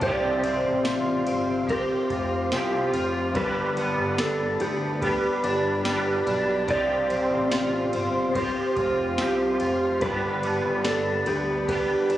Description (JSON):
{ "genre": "dream pop", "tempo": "72 BPM", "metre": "4/4", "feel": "straight", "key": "unclear", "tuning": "A4 = 440 Hz", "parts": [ { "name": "mellow electric guitar", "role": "melody", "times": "0.0-12.2 s", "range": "G4 to D5", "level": "-29 LUFS", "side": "right 1 dB", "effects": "tape echo" }, { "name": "clean electric guitar", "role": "accompaniment", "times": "0.0-12.2 s", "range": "G2 to G4", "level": "-32 LUFS", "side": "right 1 dB", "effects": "tremolo, ensemble chorus" }, { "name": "mellow tonewheel organ", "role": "sustained chords", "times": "0.0-12.2 s", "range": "G4 to C6", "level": "-30 LUFS", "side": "right 2 dB", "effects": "fast rotary speaker" }, { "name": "fingerpicked twelve-string acoustic guitar", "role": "arpeggios", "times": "0.0-12.2 s", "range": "G2 to G4", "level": "-26 LUFS", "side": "left 1 dB", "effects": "analog chorus, tape echo" }, { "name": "chorused synth bass", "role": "bass", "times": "0.0-12.2 s", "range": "F1 to D2", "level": "-33 LUFS", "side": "equal", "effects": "none" }, { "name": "soft vintage rhythm box", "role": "drums", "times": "0.0-12.2 s", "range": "kick drum, ride cymbal, snare drum, tambourine", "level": "-35 LUFS", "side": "equal", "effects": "none" } ], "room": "light reverb, digital ambience", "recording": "recorded on a phone in the room, studio reverb", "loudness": "-22 LUFS", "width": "side -13 dB against mid", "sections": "0.0-12.2 A section", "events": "none", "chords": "0.0 Csus4; 3.3 G; 6.7 Csus4; 10.0 G", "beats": "| 0.01 0.85 1.68 2.52 | 3.35 4.18 5.01 5.85 | 6.68 7.51 8.35 9.18 | 10.02 10.85 11.68" }